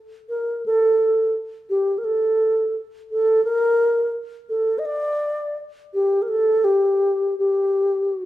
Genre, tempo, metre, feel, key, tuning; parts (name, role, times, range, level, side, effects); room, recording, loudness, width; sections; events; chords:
japanese traditional; 85 BPM; 4/4; rubato; G hirajoshi; A4 = 441 Hz
mellow wooden-headed alto flute; solo; 0.3-8.3 s; G4 to Eb5; -18 LUFS; equal
moderate recital hall reverb, RT60 1.6 s; minimal, uncompressed stereo recording; -18 LUFS; side -14 dB against mid
0.0-8.3 A section